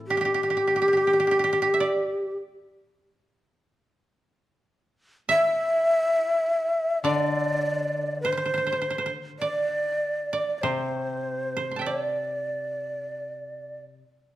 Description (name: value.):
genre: japanese traditional, Japanese chamber music.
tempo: 46-53 BPM.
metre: 4/4.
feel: rubato.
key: D suspended pentatonic.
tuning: A4 = 440 Hz.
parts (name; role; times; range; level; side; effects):
koto; second line; 0.0-13.8 s; G4 to C6; -27 LUFS; right 4 dB; none.
koto; accompaniment; 0.0-14.0 s; A2 to E4; -33 LUFS; left 4 dB; none.
breathy mellow shakuhachi; melody; 0.1-13.8 s; G4 to E5; -24 LUFS; equal; none.
room: moderate recital hall reverb, RT60 1.3 s.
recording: dark, warm production.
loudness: -23 LUFS.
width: side -14 dB against mid.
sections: 0.0-14.4 A section.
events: none.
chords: none.